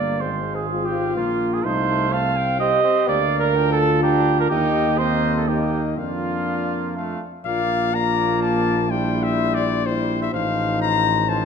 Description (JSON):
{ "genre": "classical, brass quintet", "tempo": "125 BPM", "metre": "3/4", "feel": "straight", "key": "Bb major", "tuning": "A4 = 439 Hz", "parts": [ { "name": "warm cornet", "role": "melody", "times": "0.0-11.4 s", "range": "C5 to Bb5", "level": "-26 LUFS", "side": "left 9 dB", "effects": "none" }, { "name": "warm flugelhorn", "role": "second line", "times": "0.0-11.4 s", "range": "F4 to F5", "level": "-23 LUFS", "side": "right 6 dB", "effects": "none" }, { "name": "brilliant trombone", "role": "accompaniment", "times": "0.0-11.4 s", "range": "F3 to D4", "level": "-30 LUFS", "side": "right 3 dB", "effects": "none" }, { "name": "warm French horn", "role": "accompaniment", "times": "0.0-11.4 s", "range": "Ab3 to G4", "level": "-25 LUFS", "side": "left 4 dB", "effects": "none" }, { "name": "dark tuba", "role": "bass", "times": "0.0-11.4 s", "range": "G1 to F2", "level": "-24 LUFS", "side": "right 2 dB", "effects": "none" } ], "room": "wet recital hall reverb, RT60 1.3 s", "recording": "dark, warm production", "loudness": "-18 LUFS", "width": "side -6 dB against mid", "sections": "0.0-7.5 A section; 7.5-11.4 B section", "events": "none", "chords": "0.2 Fm/Ab; 1.6 F7/C; 3.1 Bb/D; 4.5 Cm7/Eb; 6.0 Bb/F; 7.0 F; 7.5 Bb; 8.9 C7/Bb; 10.3 F7/A", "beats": "| 0.22 0.69 1.17 | 1.64 2.12 2.60 | 3.08 3.56 4.03 | 4.51 4.99 5.48 | 5.97 6.47 6.96 | 7.45 7.93 8.41 | 8.89 9.38 9.86 | 10.33 10.81 11.28" }